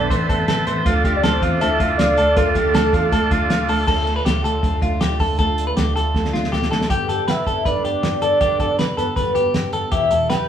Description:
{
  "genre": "jangly indie pop",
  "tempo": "159 BPM",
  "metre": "4/4",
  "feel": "straight",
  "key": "unclear",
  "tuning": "A4 = 439 Hz",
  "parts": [
    { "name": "soft octave-layered synth lead", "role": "melody", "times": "0.0-3.5, 6.9-10.5 s", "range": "A4 to G5", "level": "-20 LUFS", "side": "equal", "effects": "chorus, phaser" },
    { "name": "combo organ", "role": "accompaniment", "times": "0.0-3.8 s", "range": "C4 to B4", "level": "-23 LUFS", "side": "right 4 dB", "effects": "none" },
    { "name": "picked steel-string acoustic guitar", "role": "accompaniment", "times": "0.0-10.5 s", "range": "E2 to G4", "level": "-28 LUFS", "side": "right 3 dB", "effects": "none" },
    { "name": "direct-recorded clean electric guitar", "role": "arpeggios", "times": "0.0-10.5 s", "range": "F4 to C5", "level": "-23 LUFS", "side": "left 2 dB", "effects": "none" },
    { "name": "vintage muted picked electric bass", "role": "bass", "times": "0.0-10.3 s", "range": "E1 to E2", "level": "-23 LUFS", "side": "equal", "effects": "none" },
    { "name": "cloth-damped thuddy drum kit", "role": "drums", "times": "0.1-10.4 s", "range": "crash cymbal, hi-hat, kick drum, snare drum", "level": "-22 LUFS", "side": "right 1 dB", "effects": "none" }
  ],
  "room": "wet stone room reverb, RT60 1.0 s",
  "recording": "band playing live in one room, small room ambience",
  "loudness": "-16 LUFS",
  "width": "side -9 dB against mid",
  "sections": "0.0-3.9 A section; 3.9-6.9 B section; 6.9-10.5 C section",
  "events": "drum fill 6.1-6.9",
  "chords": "0.0 Amadd9; 0.9 Dm; 6.9 G; 9.9 Em",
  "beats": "0.10 0.48 | 0.86 1.24 1.61 1.99 | 2.37 2.75 3.12 3.50 | 3.88 4.26 4.63 5.01 | 5.39 5.77 6.14 6.52 | 6.90 7.28 7.66 8.03 | 8.41 8.79 9.17 9.54 | 9.92 10.30"
}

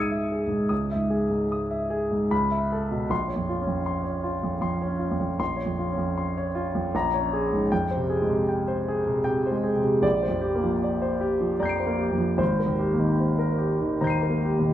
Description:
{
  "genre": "classical, impressionist solo piano",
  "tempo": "77 BPM",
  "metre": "3/4",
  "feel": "rubato",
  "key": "F minor from 7.7 s",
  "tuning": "A4 = 440 Hz",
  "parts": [
    { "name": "warm grand piano", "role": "solo", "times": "0.0-14.7 s", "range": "Ab1 to D#7", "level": "-23 LUFS", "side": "equal", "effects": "none" }
  ],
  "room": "wet recital hall reverb, RT60 1.5 s",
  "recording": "minimal, uncompressed stereo recording",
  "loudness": "-23 LUFS",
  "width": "side -12 dB against mid",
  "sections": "0.0-14.7 A section",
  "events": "none",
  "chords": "0.0 C#madd9; 2.3 B9sus4/C#; 3.1 A#madd9; 6.9 G#sus24/A#; 7.7 Fmadd9; 10.0 Bb69; 12.4 Abmaj9",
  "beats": "| 0.71 1.52 2.31 | 3.11 3.87 4.63 | 5.41 6.17 6.94 | 7.71 8.48 9.26 | 10.04 10.84 11.62 | 12.41 13.22 14.05"
}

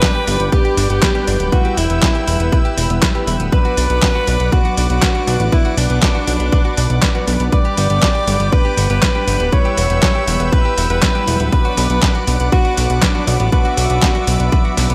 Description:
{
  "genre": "italo disco",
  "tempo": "120 BPM",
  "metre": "4/4",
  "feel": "straight",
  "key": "B minor",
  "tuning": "A4 = 440 Hz",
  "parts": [
    { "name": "breathy alto saxophone", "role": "melody", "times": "0.0-14.9 s", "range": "D4 to D5", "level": "-23 LUFS", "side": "equal", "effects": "delay" },
    { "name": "lush unison pad", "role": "sustained chords", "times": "0.0-14.9 s", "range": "B4 to E6", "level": "-27 LUFS", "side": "equal", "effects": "chorus, vintage 12-bit sampler grit" },
    { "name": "direct-recorded clean electric guitar", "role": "arpeggios", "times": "0.0-14.9 s", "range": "B3 to B4", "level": "-29 LUFS", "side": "equal", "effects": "delay" },
    { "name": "mellow synth brass", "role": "stabs", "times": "0.0-14.9 s", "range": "F#3 to B4", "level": "-27 LUFS", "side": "equal", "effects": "chorus" },
    { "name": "detuned 8-bit digital drum machine", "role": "drums", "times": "0.0-14.9 s", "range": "handclaps, hi-hat, snare drum", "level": "-22 LUFS", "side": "equal", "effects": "studio reverb, gated reverb" },
    { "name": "electronic kick drum", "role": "drums", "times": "0.0-14.6 s", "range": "none", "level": "-18 LUFS", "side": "equal", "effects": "studio reverb" },
    { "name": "fat analog bass", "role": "bass", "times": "0.3-14.9 s", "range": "D1 to B1", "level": "-19 LUFS", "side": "equal", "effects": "none" }
  ],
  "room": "little or no reverb",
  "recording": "none",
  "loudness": "-15 LUFS",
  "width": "mono",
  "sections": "0.0-14.9 A section",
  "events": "none",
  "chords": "0.0 G; 1.5 Em; 3.5 Bm; 7.5 G; 9.5 Em; 11.5 Bm",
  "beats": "0.03 0.53 1.02 | 1.52 2.02 2.52 3.02 | 3.52 4.03 4.53 5.03 | 5.53 6.03 6.53 7.03 | 7.53 8.03 8.53 9.03 | 9.53 10.03 10.53 11.03 | 11.53 12.03 12.53 13.03 | 13.53 14.03 14.53"
}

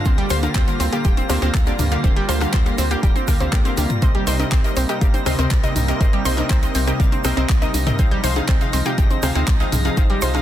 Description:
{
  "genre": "progressive house",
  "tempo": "121 BPM",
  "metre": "4/4",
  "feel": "straight",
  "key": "C minor",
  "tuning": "A4 = 441 Hz",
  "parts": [
    { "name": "supersaw pad", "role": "sustained chords", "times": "0.0-10.4 s", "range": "C3 to F4", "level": "-28 LUFS", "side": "right 1 dB", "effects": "sidechain pumping" },
    { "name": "wide unison pluck", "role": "stabs", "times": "0.0-10.4 s", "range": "C3 to G5", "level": "-24 LUFS", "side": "left 1 dB", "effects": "sidechain pumping, digital delay" },
    { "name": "egg shaker", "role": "percussion", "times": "0.0-10.4 s", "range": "none", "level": "-36 LUFS", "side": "right 6 dB", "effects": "none" },
    { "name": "drifting glass-harmonics texture", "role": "texture", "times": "0.0-10.4 s", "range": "Bb6", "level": "-34 LUFS", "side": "left 1 dB", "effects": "chorus, built-in reverb, sidechain pumping" },
    { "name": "analog pluck", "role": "arpeggios", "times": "0.1-10.3 s", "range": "G3 to C6", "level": "-25 LUFS", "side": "right 1 dB", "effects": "chorus, sidechain pumping, digital delay" },
    { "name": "tight sequencer bass", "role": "bass", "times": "0.1-10.4 s", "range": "D1 to D2", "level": "-23 LUFS", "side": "equal", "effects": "sidechain pumping" },
    { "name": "electronic kick drum", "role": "drums", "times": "0.1-10.1 s", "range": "none", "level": "-18 LUFS", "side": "equal", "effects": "none" },
    { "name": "house drum kit", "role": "drums", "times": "0.1-10.4 s", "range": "handclaps, hi-hat", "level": "-28 LUFS", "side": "equal", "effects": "none" },
    { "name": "punchy analog drum machine", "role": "percussion", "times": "0.4-10.4 s", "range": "congas, rim click, toms", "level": "-27 LUFS", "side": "left 2 dB", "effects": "sidechain pumping on perc, soft clipping on snare, sidechain pumping on snare, sidechain pumping on toms" }
  ],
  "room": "little or no reverb",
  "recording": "dense, heavily limited modern master",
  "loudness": "-16 LUFS",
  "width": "side -12 dB against mid",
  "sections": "0.0-10.4 A section",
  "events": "none",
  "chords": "0.1 Gm7/D; 4.0 Cm7; 8.0 Fm7",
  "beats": "| 0.06 0.55 1.05 1.54 | 2.04 2.54 3.03 3.53 | 4.02 4.52 5.01 5.51 | 6.01 6.50 7.00 7.49 | 7.99 8.48 8.98 9.48 | 9.97"
}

